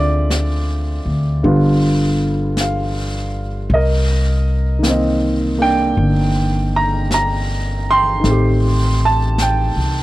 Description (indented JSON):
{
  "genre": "jazz ballad",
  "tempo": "53 BPM",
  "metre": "4/4",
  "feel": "swing 66% on 8ths",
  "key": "unclear",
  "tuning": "A4 = 440 Hz",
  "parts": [
    { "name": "warm grand piano", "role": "accompaniment", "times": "0.0-10.0 s", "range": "D3 to C6", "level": "-17 LUFS", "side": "right 1 dB", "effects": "none" },
    { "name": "upright bass", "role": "bass", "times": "0.0-10.0 s", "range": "G1 to D2", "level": "-17 LUFS", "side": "equal", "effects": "none" },
    { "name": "jazz brush drum kit", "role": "drums", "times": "0.3-10.0 s", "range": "brushed snare drum, hi-hat, snare drum", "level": "-27 LUFS", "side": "left 1 dB", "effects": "none" }
  ],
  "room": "studio ambience",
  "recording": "dry, close 1970s-style studio recording",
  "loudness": "-14 LUFS",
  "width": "side -16 dB against mid",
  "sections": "0.0-10.0 A section",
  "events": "none",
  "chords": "0.0 Dm7b5; 1.4 G7; 3.7 Cm9; 8.2 Am7b5"
}